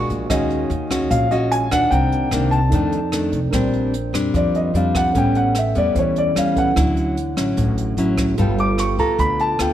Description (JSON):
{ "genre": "bossa nova", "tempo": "148 BPM", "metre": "4/4", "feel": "straight", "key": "unclear", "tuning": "A4 = 439 Hz", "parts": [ { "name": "dark grand piano", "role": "melody", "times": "0.0-9.7 s", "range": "C5 to D6", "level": "-21 LUFS", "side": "equal", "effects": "none" }, { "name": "barky tine electric piano", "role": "accompaniment", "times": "0.0-9.7 s", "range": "C#4 to Bb5", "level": "-28 LUFS", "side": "right 6 dB", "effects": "none" }, { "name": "nylon-string guitar", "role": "accompaniment", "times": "0.0-9.7 s", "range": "F2 to A4", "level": "-20 LUFS", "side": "left 2 dB", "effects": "none" }, { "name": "upright bass", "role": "bass", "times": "0.0-9.7 s", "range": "G1 to F2", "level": "-23 LUFS", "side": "equal", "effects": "none" }, { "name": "jazz brush drum kit", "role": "drums", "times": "0.1-9.7 s", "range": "hi-hat, kick drum, rim click", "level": "-26 LUFS", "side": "equal", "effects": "none" } ], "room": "light reverb", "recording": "none", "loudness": "-16 LUFS", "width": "side -11 dB against mid", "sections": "0.0-3.5 A section; 3.5-9.7 B section", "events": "grand piano solo 3.5-9.7", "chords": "0.3 Ebm11; 1.9 Cm9; 2.7 F13; 3.5 Bb69; 5.1 A9; 6.8 Dmaj9; 8.4 G9" }